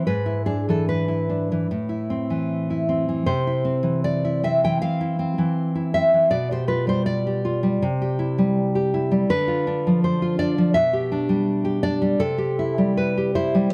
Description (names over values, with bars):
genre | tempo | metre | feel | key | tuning
romantic piece for solo classical guitar | 72-84 BPM | 4/4 | rubato | unclear | A4 = 440 Hz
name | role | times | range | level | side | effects
nylon-string guitar | solo | 0.0-13.7 s | G#2 to G5 | -22 LUFS | equal | none
room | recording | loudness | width
light reverb | close, detailed microphones | -22 LUFS | mono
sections
0.0-13.7 A section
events
none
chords
0.1 E7/G#; 1.7 Am; 3.3 C; 6.3 G7/B; 7.8 C; 9.3 Dm; 10.8 G/B; 12.2 C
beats
| 0.06 0.89 1.70 2.49 | 3.26 4.05 4.83 5.58 | 6.33 7.09 7.84 8.56 | 9.29 10.03 10.76 11.49 | 12.21 12.95 13.71